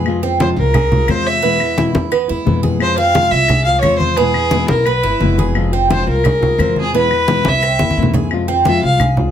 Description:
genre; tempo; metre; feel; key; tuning
latin, Cuban son and guajira; 174 BPM; 4/4; straight; unclear; A4 = 440 Hz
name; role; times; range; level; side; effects
nylon-string guitar; accompaniment; 0.0-9.3 s; B2 to F4; -20 LUFS; left 5 dB; none
Cuban tres; arpeggios; 0.0-9.3 s; B3 to C5; -21 LUFS; right 7 dB; none
upright bass; bass; 0.0-9.3 s; F1 to F2; -20 LUFS; equal; none
claves; percussion; 0.1-9.2 s; none; -25 LUFS; left 6 dB; none
congas; percussion; 0.1-9.3 s; none; -19 LUFS; equal; none
warm violin; melody; 0.4-9.0 s; Ab4 to F5; -16 LUFS; equal; none
room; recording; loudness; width
moderate studio reverb, RT60 0.5 s; none; -12 LUFS; side -9 dB against mid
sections
0.0-8.3 A section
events
drum fill 7.8-8.3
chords
0.1 Fm; 1.4 E; 2.8 Fm; 4.2 E; 5.6 Fm; 6.9 E; 7.6 C7; 8.3 Fm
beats
| 0.06 0.40 0.74 1.09 | 1.43 1.77 2.12 2.46 | 2.81 3.15 3.49 3.84 | 4.18 4.53 4.87 5.21 | 5.56 5.90 6.25 6.59 | 6.93 7.28 7.62 7.97 | 8.31 8.66 9.00

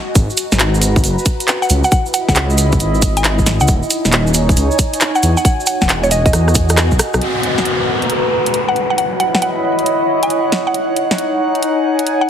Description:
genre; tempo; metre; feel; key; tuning
UK garage, two-step garage; 136 BPM; 4/4; swing 66% on 16ths; G# minor; A4 = 441 Hz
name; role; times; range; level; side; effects
warbly tape-like pad; texture; 0.0-12.3 s; D#4 to B5; -18 LUFS; equal; chorus, built-in reverb, sidechain pumping
dark detuned saw bass; bass; 0.2-7.2 s; D#1 to E2; -15 LUFS; equal; none
electronic kick drum; drums; 0.2-7.0 s; none; -15 LUFS; equal; studio reverb
garage drum kit; drums; 0.2-12.2 s; handclaps, hi-hat, rim click, snare drum; -18 LUFS; equal; studio reverb
cabasa; percussion; 0.2-7.2 s; none; -22 LUFS; right 4 dB; none
mallet-like synth pluck; melody; 1.6-12.3 s; C#5 to G#5; -19 LUFS; equal; chorus, cassette tape, ping-pong delay
airy breathy pad; sustained chords; 7.2-12.3 s; F#5; -24 LUFS; right 3 dB; chorus, sidechain pumping
downlifter; sound effects; 7.2-10.7 s; none; -21 LUFS; equal; none
room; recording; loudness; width
moderate lush hall reverb, RT60 1.8 s, digital ambience; heavily compressed radio sound, multiband compression; -12 LUFS; side -8 dB against mid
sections
0.0-7.2 A section; 7.2-12.3 B section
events
drum fill 6.3-7.2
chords
0.2 G#m9; 1.7 C#m9; 3.7 D#7sus4; 5.2 Emaj9; 7.2 G#m9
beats
| 0.15 0.60 1.04 1.48 | 1.92 2.36 2.80 3.24 | 3.68 4.12 4.57 5.01 | 5.45 5.89 6.33 6.77 | 7.21 7.66 8.10 8.54 | 8.98 9.42 9.86 10.30 | 10.74 11.18 11.62 12.07

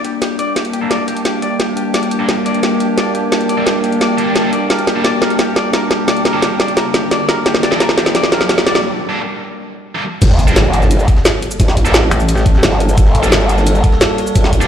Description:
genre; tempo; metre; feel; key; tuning
dark technical drum and bass; 174 BPM; 4/4; straight; G minor; A4 = 440 Hz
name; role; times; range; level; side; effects
metallic inharmonic drone; sustained chords; 0.0-14.7 s; G3 to A4; -21 LUFS; right 2 dB; chorus, built-in reverb, sidechain pumping
clean electric guitar; arpeggios; 0.0-8.8 s; G4 to D5; -21 LUFS; left 2 dB; sidechain pumping, low-pass filter, digital delay
drum and bass drum kit; drums; 0.0-14.7 s; crash cymbal, hi-hat, shaker, snare drum; -16 LUFS; equal; none
warbly tape-like pad; texture; 0.0-8.8 s; Bb3 to A5; -20 LUFS; left 4 dB; chorus, built-in reverb, sidechain pumping
high-gain distorted guitar; stabs; 0.8-14.7 s; G3 to A4; -24 LUFS; right 2 dB; distortion, low-pass filter, digital delay
riser and impact; sound effects; 6.9-11.6 s; none; -21 LUFS; equal; none
growl bass; bass; 10.2-14.7 s; G1 to A1; -14 LUFS; equal; chorus, overdrive, sidechain pumping
breakbeat sampler-style drum kit; drums; 10.2-14.7 s; hi-hat, snare drum; -27 LUFS; equal; none
electronic kick drum; drums; 10.2-14.6 s; none; -12 LUFS; equal; none
metallic wobble bass; bass; 12.1-12.6 s; A1; -13 LUFS; equal; chorus
room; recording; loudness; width
light reverb, digital ambience; played on a big sound system in a bare room, large studio reverb; -12 LUFS; side -9 dB against mid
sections
0.0-10.2 A section; 10.2-14.7 B section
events
build-up 0.0-10.2; drum fill 0.0-8.8; riser 6.9-8.8; break 8.8-10.2; drop 10.2-14.7; impact 10.2-11.6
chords
0.0 Gmadd9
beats
0.22 | 0.56 0.91 1.25 1.60 | 1.94 2.29 2.63 2.98 | 3.32 3.67 4.01 4.36 | 4.70 5.04 5.39 5.73 | 6.08 6.42 6.77 7.11 | 7.46 7.80 8.15 8.49 | 8.84 9.18 9.53 9.87 | 10.22 10.56 10.91 11.25 | 11.60 11.94 12.29 12.63 | 12.98 13.32 13.66 14.01 | 14.36

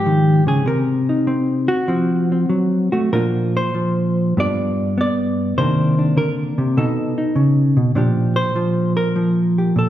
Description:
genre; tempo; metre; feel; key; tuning
solo jazz; 99 BPM; 4/4; swing 69% on 8ths, rubato; Bb major; A4 = 440 Hz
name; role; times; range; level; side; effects
hollow-body jazz guitar; solo; 0.0-9.9 s; G2 to D5; -16 LUFS; equal; none
room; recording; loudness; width
wet scoring stage reverb, RT60 1.6 s; recorded in a church or concert hall; -16 LUFS; side -12 dB against mid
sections
0.0-9.9 A section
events
none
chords
0.0 Dbmaj9; 0.7 Cm7; 1.9 F; 3.1 Bbadd9; 4.4 G7; 5.6 Cm9; 6.8 B9; 8.0 Bb6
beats
0.06 | 0.66 1.27 1.88 2.50 | 3.14 3.77 4.38 4.99 | 5.58 6.18 6.78 7.36 | 7.96 8.56 9.16 9.77

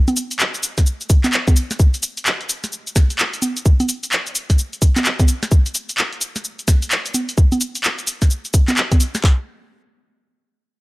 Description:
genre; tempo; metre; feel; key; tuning
UK garage; 129 BPM; 4/4; swing 62% on 16ths; none; none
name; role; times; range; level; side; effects
punchy analog drum machine; drums; 0.1-9.2 s; congas, handclaps, hi-hat, shaker, snare drum; -19 LUFS; equal; none
garage drum kit; drums; 0.8-9.4 s; handclaps, kick drum; -13 LUFS; equal; none
room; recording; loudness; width
digital ambience; dry, gritty hardware recording; -16 LUFS; side -21 dB against mid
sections
0.0-9.2 A section; 9.2-10.8 B section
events
drop 0.0-9.2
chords
none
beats
0.40 0.86 1.33 | 1.79 2.26 2.73 3.19 | 3.65 4.12 4.58 5.05 | 5.51 5.98 6.45 6.91 | 7.38 7.84 8.31 8.77 | 9.24

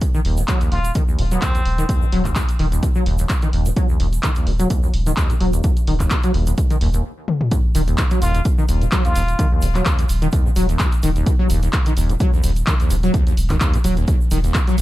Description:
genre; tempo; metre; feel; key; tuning
acid house; 128 BPM; 4/4; swing 55% on 16ths; unclear; A4 = 439 Hz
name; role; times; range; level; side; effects
electronic kick drum; drums; 0.0-14.6 s; none; -18 LUFS; equal; none
punchy analog drum machine; drums; 0.0-14.8 s; handclaps, hi-hat, toms; -26 LUFS; left 1 dB; none
tube shaker; percussion; 0.0-14.8 s; none; -36 LUFS; right 5 dB; none
acid bass, saw; riff; 0.1-14.8 s; Eb2 to Gb3; -22 LUFS; equal; tube saturation, lush chorus, sidechain pumping, digital delay
warm sub bass; bass; 0.2-14.8 s; Eb1; -20 LUFS; equal; sidechain pumping
trumpet with plunger mute; melody; 0.7-2.0, 8.2-9.5 s; C4 to F4; -28 LUFS; equal; ping-pong delay
room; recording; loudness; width
little or no reverb; dark, warm production; -16 LUFS; side -16 dB against mid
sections
0.0-7.5 A section; 7.5-14.8 B section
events
stop 7.0-7.5; drum fill 7.3; drop 7.5-14.8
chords
none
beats
| 0.01 0.48 0.95 1.42 | 1.89 2.36 2.83 3.30 | 3.77 4.23 4.70 5.17 | 5.64 6.11 6.58 7.05 | 7.51 7.98 8.45 8.92 | 9.39 9.86 10.33 10.80 | 11.27 11.73 12.20 12.67 | 13.14 13.61 14.08 14.55

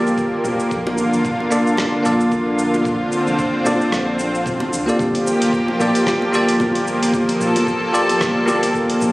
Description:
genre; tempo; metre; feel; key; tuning
sunset chillout; 112 BPM; 4/4; swing 57% on 16ths; G minor; A4 = 442 Hz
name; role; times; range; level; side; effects
bell-like tine electric piano; accompaniment; 0.0-9.1 s; Bb3 to D5; -19 LUFS; equal; auto-pan, tape echo
lush unison pad; sustained chords; 0.0-9.1 s; D3 to A4; -19 LUFS; equal; chorus
warm sub bass; bass; 0.0-9.1 s; D1 to D2; -33 LUFS; equal; none
dusty soul sampler-style drum kit; drums; 0.1-9.1 s; congas, hi-hat, rim click, shaker; -27 LUFS; equal; none
electronic kick drum; drums; 0.2-8.9 s; none; -31 LUFS; equal; none
bongos; percussion; 0.5-9.1 s; none; -27 LUFS; equal; none
room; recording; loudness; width
light reverb, digital ambience; recorded on a phone in the room, studio reverb; -16 LUFS; side -19 dB against mid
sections
0.0-9.1 A section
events
none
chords
0.0 Gm9; 0.7 Bbmaj7; 5.0 Gm9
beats
0.17 | 0.71 1.25 1.78 2.32 | 2.85 3.39 3.92 4.46 | 5.00 5.53 6.07 6.60 | 7.14 7.67 8.21 8.74

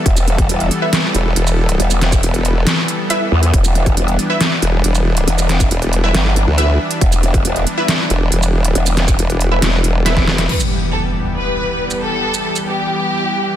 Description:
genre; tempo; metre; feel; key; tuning
heavy wobble dubstep; 138 BPM; 4/4; half-time; E minor; A4 = 440 Hz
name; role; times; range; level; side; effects
supersaw pad; sustained chords; 0.0-13.6 s; E3 to A4; -22 LUFS; left 1 dB; sidechain pumping
growl bass; bass; 0.1-9.2 s; E1 to E2; -15 LUFS; equal; chorus, overdrive
dubstep drum kit; drums; 0.1-12.6 s; crash cymbal, hi-hat, shaker, snare drum; -19 LUFS; right 1 dB; small room ambience
electronic kick drum; drums; 0.1-10.3 s; none; -16 LUFS; equal; small room ambience
orchestra-hit-like synth stab; stabs; 0.8-10.2 s; E4 to E5; -22 LUFS; right 1 dB; built-in reverb, ping-pong delay
formant-sweep wobble bass; bass; 1.1-10.5 s; E1 to D2; -15 LUFS; equal; chorus, overdrive
warm symphonic violin section; melody; 10.5-13.6 s; G4 to B4; -19 LUFS; left 1 dB; ping-pong delay
impact; sound effects; 10.5-12.2 s; none; -22 LUFS; equal; none
room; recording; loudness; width
light reverb; dense, heavily limited modern master; -13 LUFS; side -11 dB against mid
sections
0.0-10.5 A section; 10.5-13.6 B section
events
drop 0.0-10.5; drum fill 10.1-10.5; impact 10.5-12.2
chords
0.0 Em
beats
| 0.06 0.49 0.93 1.36 | 1.80 2.23 2.67 3.10 | 3.54 3.97 4.41 4.84 | 5.28 5.71 6.14 6.58 | 7.01 7.45 7.88 8.32 | 8.75 9.19 9.62 10.06 | 10.49 10.93 11.36 11.80 | 12.23 12.67 13.10 13.54

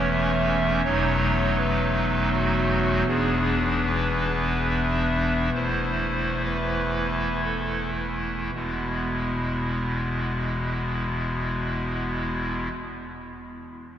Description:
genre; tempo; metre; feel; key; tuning
classical, chorale-style piece for pipe organ; 53-82 BPM; 3/4; rubato; E major; A4 = 440 Hz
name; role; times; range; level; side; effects
pipe organ, clarinet reed; solo; 0.0-12.7 s; E1 to E5; -23 LUFS; equal; none
room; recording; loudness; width
wet cathedral reverb, RT60 5.7 s; recorded in a church or concert hall; -22 LUFS; side -10 dB against mid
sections
0.0-8.5 A section; 8.5-11.9 B section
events
slowing down 2.0-8.5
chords
0.0 A/E; 0.8 B7/E; 3.1 E7; 5.5 Am/E; 8.5 E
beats
0.10 | 0.85 1.58 2.32 | 3.07 3.85 4.68 | 5.53 6.44 7.43 | 8.54 9.67 10.80

